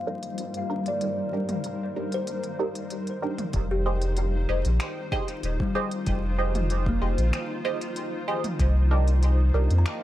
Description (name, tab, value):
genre	ambient dub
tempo	95 BPM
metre	4/4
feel	straight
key	F dorian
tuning	A4 = 437 Hz
part	granular cloud pad	sustained chords	0.0-10.0 s	G3 to Eb5	-33 LUFS	left 1 dB	built-in reverb
part	kalimba	arpeggios	0.0-10.0 s	G3 to Bb5	-34 LUFS	left 2 dB	dub echo
part	filtered dub chord stab	stabs	0.1-9.7 s	D4 to Eb5	-32 LUFS	right 2 dB	phaser, wide subtle chorus, dub echo
part	organic electronic drum kit	drums	0.2-10.0 s	finger snaps, hi-hat, toms	-37 LUFS	right 1 dB	studio reverb, dub echo
part	warm sub bass	bass	3.5-9.8 s	Eb1 to F2	-22 LUFS	equal	none
part	electronic kick drum	drums	3.5-8.7 s	none	-29 LUFS	equal	studio reverb
room	digital ambience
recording	echo-heavy mix, vinyl crackle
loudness	-24 LUFS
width	side -14 dB against mid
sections	0.0-3.5 A section; 3.5-10.0 B section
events	filter sweep on ambient pad 0.0-3.5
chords	0.0 Cm7; 3.5 Fm7; 8.6 Cm7